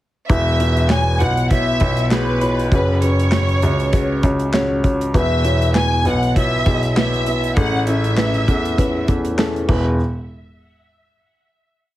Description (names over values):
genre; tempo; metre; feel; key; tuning
piano-driven pop; 99 BPM; 4/4; swing 56% on 16ths; E major; A4 = 438 Hz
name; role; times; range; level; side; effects
warm symphonic violin section; melody; 0.3-9.1 s; B4 to G#5; -22 LUFS; equal; none
felt-muted upright piano; accompaniment; 0.3-10.0 s; E2 to E5; -21 LUFS; left 1 dB; none
warm grand piano; bass; 0.3-10.0 s; E1 to E2; -19 LUFS; equal; none
modern studio drum kit; drums; 0.3-9.8 s; crash cymbal, handclaps, hi-hat, kick drum, snare drum; -20 LUFS; equal; none
room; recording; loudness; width
light reverb, small room ambience; heavily compressed radio sound, multiband compression; -15 LUFS; side -14 dB against mid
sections
0.3-10.0 verse; 10.0-12.0 final hit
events
none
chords
0.3 Esus2; 2.7 F#sus2; 5.1 Esus2; 7.6 Amaj7; 9.7 E; 10.0 N.C.